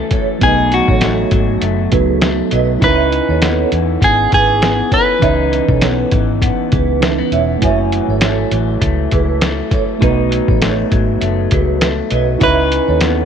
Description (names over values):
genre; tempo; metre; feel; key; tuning
indie pop, bedroom pop; 100 BPM; 4/4; swing 55% on 16ths; C# minor; A4 = 440 Hz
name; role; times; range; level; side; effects
clean electric guitar; melody; 0.0-7.3, 12.4-13.2 s; F#4 to B4; -16 LUFS; equal; wide subtle chorus, slapback echo
electric guitar through a small old amp; accompaniment; 0.0-13.2 s; F#2 to D#4; -20 LUFS; left 13 dB; wide subtle chorus, warbly pitch drift
mellow tine electric piano; accompaniment; 0.0-13.2 s; E3 to C#5; -20 LUFS; right 12 dB; fast stereo tremolo, cassette tape
vibraphone with medium hard mallets; second line; 0.1-13.2 s; G#4 to E5; -22 LUFS; right 10 dB; ensemble chorus, slapback echo
lo-fi sampler-style drum kit; drums; 0.1-13.2 s; hi-hat, kick drum, snare drum; -17 LUFS; left 1 dB; none
vintage muted fingered electric bass; bass; 0.4-13.2 s; E1 to E2; -18 LUFS; left 1 dB; none
room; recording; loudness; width
light reverb; 1960s-style stereo with parts hard left and right; -12 LUFS; side -8 dB against mid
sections
0.0-13.2 A section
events
none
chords
0.4 B7; 2.8 C#m9; 7.6 F#m7; 10.0 B7; 12.4 C#m9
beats
| 0.42 1.02 1.62 2.22 | 2.82 3.42 4.02 4.62 | 5.22 5.82 6.42 7.02 | 7.62 8.22 8.81 9.41 | 10.01 10.61 11.21 11.81 | 12.41 13.01